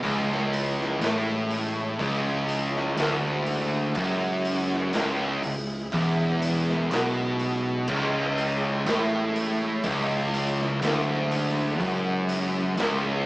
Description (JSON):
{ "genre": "stoner and doom metal", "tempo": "61 BPM", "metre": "4/4", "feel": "straight", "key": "C# minor", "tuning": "A4 = 440 Hz", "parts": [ { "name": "bright tonewheel organ", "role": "sustained chords", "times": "0.0-13.3 s", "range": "C#3 to E4", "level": "-36 LUFS", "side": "equal", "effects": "none" }, { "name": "distorted electric guitar", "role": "riff", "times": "0.0-13.2 s", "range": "C#2 to B2", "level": "-27 LUFS", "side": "equal", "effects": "overdrive" }, { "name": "thick fuzz guitar", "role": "riff", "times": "0.0-13.2 s", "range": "C#2 to B2", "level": "-32 LUFS", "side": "left 1 dB", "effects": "distortion" }, { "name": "thick fuzz guitar", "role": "riff", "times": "0.0-13.2 s", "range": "C#2 to B2", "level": "-29 LUFS", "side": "right 1 dB", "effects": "distortion" }, { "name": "growling picked electric bass", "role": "bass", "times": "0.0-13.2 s", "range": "C#1 to B1", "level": "-37 LUFS", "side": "equal", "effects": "overdrive" }, { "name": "raw garage drum kit", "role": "drums", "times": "0.0-13.0 s", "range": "crash cymbal, hi-hat, kick drum, snare drum", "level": "-32 LUFS", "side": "equal", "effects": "none" } ], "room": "moderate studio reverb, RT60 0.7 s", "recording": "rough rehearsal-room recording, small speaker sound", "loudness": "-23 LUFS", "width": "side -21 dB against mid", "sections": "0.0-13.3 A section", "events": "none", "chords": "0.0 C#m" }